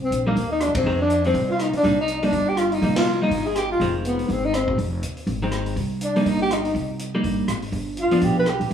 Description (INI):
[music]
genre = jazz, small-group swing and bop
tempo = 244 BPM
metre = 4/4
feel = swing 58% on 8ths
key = C minor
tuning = A4 = 440 Hz
[part]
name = breathy tenor saxophone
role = melody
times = 0.0-8.7 s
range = Bb3 to B4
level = -23 LUFS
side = left 2 dB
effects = none
[part]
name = trombone with plunger mute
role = second line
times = 0.0-8.7 s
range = Bb3 to B4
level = -27 LUFS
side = right 2 dB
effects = none
[part]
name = upright bass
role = bass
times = 0.0-8.7 s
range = F1 to C3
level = -27 LUFS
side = equal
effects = none
[part]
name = swinging big-band drum kit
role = drums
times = 0.1-8.7 s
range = hi-hat, kick drum, ride cymbal, rim click, snare drum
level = -30 LUFS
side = equal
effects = none
[part]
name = vintage hollow-body jazz guitar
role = accompaniment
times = 0.3-8.5 s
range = Eb3 to Eb4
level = -25 LUFS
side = right 1 dB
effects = none
[sound]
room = moderate echo chamber reverb, RT60 1.7 s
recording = heard from further back in the room, small room ambience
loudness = -20 LUFS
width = side -8 dB against mid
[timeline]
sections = 0.0-8.7 A section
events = band accent 0.7, 2.9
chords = 0.0 Cm7; 0.9 Fm7; 1.8 Cm7; 3.8 Fm7; 5.8 Cm7; 7.7 G7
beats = 0.12 0.36 0.61 | 0.85 1.10 1.34 1.59 | 1.83 2.08 2.33 2.57 | 2.82 3.06 3.31 3.55 | 3.80 4.05 4.29 4.54 | 4.78 5.03 5.28 5.52 | 5.77 6.01 6.26 6.50 | 6.75 7.00 7.24 7.49 | 7.73 7.98 8.22 8.47 | 8.71